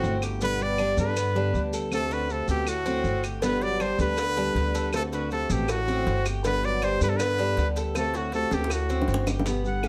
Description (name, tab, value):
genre	latin, Cuban son and guajira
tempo	159 BPM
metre	4/4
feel	straight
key	G major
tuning	A4 = 441 Hz
part	warm trumpet	melody	0.0-9.9 s	F#4 to F#5	-31 LUFS	equal	none
part	mellow bassoon	second line	0.0-9.3 s	A2 to G3	-36 LUFS	equal	none
part	fingerpicked steel-string acoustic guitar	accompaniment	0.0-9.9 s	B2 to G4	-34 LUFS	equal	none
part	Cuban tres	arpeggios	0.0-9.9 s	B3 to A4	-35 LUFS	equal	none
part	upright bass	bass	0.0-9.9 s	G1 to G2	-32 LUFS	equal	none
part	maracas	percussion	0.0-9.9 s	none	-43 LUFS	equal	none
part	claves	percussion	0.2-9.9 s	none	-41 LUFS	equal	none
part	cowbell and bongos	percussion	3.4-9.9 s	none	-36 LUFS	equal	none
room	moderate studio reverb, RT60 0.8 s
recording	none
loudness	-26 LUFS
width	mono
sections	0.0-9.5 A section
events	drum fill 8.5-9.5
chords	0.4 G; 1.9 D7; 3.4 G; 4.9 D7; 6.4 G; 8.0 D7